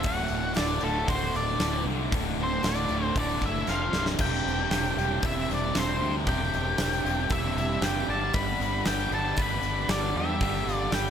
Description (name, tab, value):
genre	classic rock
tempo	116 BPM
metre	4/4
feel	straight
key	C lydian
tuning	A4 = 440 Hz
part	octave-fuzz lead guitar	melody	0.0-11.1 s	A4 to B5	-31 LUFS	left 2 dB	distortion
part	octave-fuzz lead guitar	second line	0.0-11.1 s	A3 to D5	-36 LUFS	right 3 dB	distortion
part	bright tonewheel organ	sustained chords	0.0-11.1 s	A3 to D5	-44 LUFS	equal	none
part	crunchy overdriven guitar	riff	0.0-11.1 s	C2 to G3	-33 LUFS	right 8 dB	phaser
part	tight distorted guitar	riff	0.0-11.1 s	C2 to G3	-33 LUFS	left 9 dB	distortion
part	growling fingered electric bass	bass	0.0-11.1 s	C1 to E2	-32 LUFS	equal	overdrive
part	huge arena drum kit	drums	0.0-11.0 s	crash cymbal, hi-hat, kick drum, snare drum	-31 LUFS	equal	none
part	tambourine	percussion	0.0-11.1 s	none	-48 LUFS	left 10 dB	none
room	light reverb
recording	none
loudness	-24 LUFS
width	side -8 dB against mid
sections	0.0-11.1 A section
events	drum fill 3.7-4.2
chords	0.0 D; 3.7 F5; 3.9 C5; 4.2 Cadd9/E; 8.1 G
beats	| 0.05 0.56 1.08 1.60 | 2.12 2.64 3.16 3.68 | 4.20 4.72 5.24 5.75 | 6.27 6.79 7.31 7.83 | 8.35 8.86 9.38 9.90 | 10.41 10.93